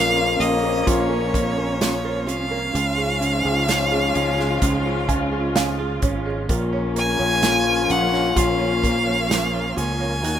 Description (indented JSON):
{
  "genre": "pop ballad",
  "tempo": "64 BPM",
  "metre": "4/4",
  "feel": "straight",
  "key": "unclear",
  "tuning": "A4 = 441 Hz",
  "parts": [
    { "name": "bright violin", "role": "melody", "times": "0.0-10.4 s", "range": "Db5 to Ab5", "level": "-23 LUFS", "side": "right 1 dB", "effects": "ping-pong delay" },
    { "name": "mellow French horn section", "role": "second line", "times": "0.0-10.4 s", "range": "F2 to F4", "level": "-25 LUFS", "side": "left 7 dB", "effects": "none" },
    { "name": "felt-muted upright piano", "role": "accompaniment", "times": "0.0-10.4 s", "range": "Eb3 to Ab5", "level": "-27 LUFS", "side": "right 4 dB", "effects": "none" },
    { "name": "warm studio string section", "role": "sustained chords", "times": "0.0-10.4 s", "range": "Db3 to Gb4", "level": "-27 LUFS", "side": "equal", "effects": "none" },
    { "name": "direct-recorded clean electric guitar", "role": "arpeggios", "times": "0.0-10.4 s", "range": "Bb2 to Gb4", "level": "-34 LUFS", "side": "right 6 dB", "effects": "ping-pong delay" },
    { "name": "fingered electric bass", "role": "bass", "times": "0.0-10.4 s", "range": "Ab1 to Eb2", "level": "-26 LUFS", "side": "equal", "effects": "none" },
    { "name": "natural country drum kit", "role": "drums", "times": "0.4-10.4 s", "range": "hi-hat, kick drum, snare drum", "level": "-24 LUFS", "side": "right 1 dB", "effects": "none" },
    { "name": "tambourine", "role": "percussion", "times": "1.8-9.5 s", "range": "none", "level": "-36 LUFS", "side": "left 5 dB", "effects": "none" }
  ],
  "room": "light reverb, small room ambience",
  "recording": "rough home demo mix",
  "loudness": "-18 LUFS",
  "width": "side -10 dB against mid",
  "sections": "0.0-10.4 A section",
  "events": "felt piano fill 4.6-6.5",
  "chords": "0.0 Bbm; 2.7 Db; 6.5 Bbm",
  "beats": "0.87 1.81 | 2.74 3.68 4.62 5.56 | 6.49 7.43 8.37 9.31 | 10.24"
}